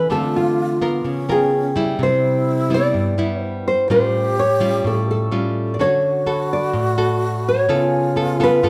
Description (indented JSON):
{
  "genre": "bossa nova",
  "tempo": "126 BPM",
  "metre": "4/4",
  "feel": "straight",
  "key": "unclear",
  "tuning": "A4 = 440 Hz",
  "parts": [
    { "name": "nylon-string guitar", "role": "melody", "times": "0.0-8.7 s", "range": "F4 to D5", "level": "-22 LUFS", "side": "equal", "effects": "none" },
    { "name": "breathy mellow wooden-headed alto flute", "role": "second line", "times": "0.0-8.7 s", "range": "C#4 to G4", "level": "-27 LUFS", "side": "equal", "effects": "none" },
    { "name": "nylon-string guitar", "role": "accompaniment", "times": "0.0-8.7 s", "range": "G2 to Bb4", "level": "-23 LUFS", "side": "equal", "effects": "none" },
    { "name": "vibraphone with soft mallets", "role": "accompaniment", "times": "0.0-8.7 s", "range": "A4 to D6", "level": "-33 LUFS", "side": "equal", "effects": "none" }
  ],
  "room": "moderate large studio reverb, RT60 1.3 s",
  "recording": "band playing live in one room",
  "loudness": "-19 LUFS",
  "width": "mono",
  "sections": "0.0-8.7 A section",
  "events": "none",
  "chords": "0.1 Dm7; 1.1 C#6; 2.0 Cmaj7; 3.9 A7alt; 5.8 Dmaj7; 7.7 C#7b13",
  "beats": "| 0.10 0.58 1.05 1.52 | 2.00 2.47 2.95 3.42 | 3.90 4.37 4.85 5.32 | 5.80 6.27 6.75 7.22 | 7.69 8.17 8.64"
}